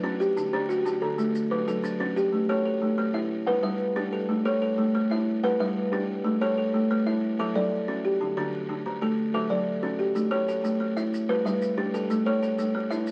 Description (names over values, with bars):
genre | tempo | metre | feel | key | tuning
southern african traditional, mbira-style interlocking cycle | 123 BPM (dotted quarters) | 12/8 | straight | A mixolydian | A4 = 440 Hz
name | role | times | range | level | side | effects
buzzing kalimba | arpeggios | 0.0-13.1 s | D3 to E5 | -31 LUFS | equal | none
kalimba | arpeggios | 0.0-13.1 s | D3 to F#5 | -28 LUFS | equal | none
maracas | percussion | 0.2-2.3, 10.2-13.1 s | none | -50 LUFS | equal | none
room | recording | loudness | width
moderate studio reverb, RT60 0.8 s | very old 78 rpm record, vinyl crackle | -26 LUFS | mono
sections
0.0-2.3 A section; 2.3-13.1 B section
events
none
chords
0.4 D; 1.3 F#m; 2.3 A; 3.3 G; 4.3 A; 5.3 G; 6.3 A; 7.2 F#m; 8.2 D; 9.2 F#m; 10.2 A; 11.1 G; 12.1 A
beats
| 0.36 0.85 1.34 1.83 | 2.33 2.82 3.31 3.80 | 4.29 4.78 5.27 5.76 | 6.25 6.74 7.23 7.72 | 8.21 8.70 9.18 9.67 | 10.16 10.64 11.13 11.61 | 12.10 12.58 13.07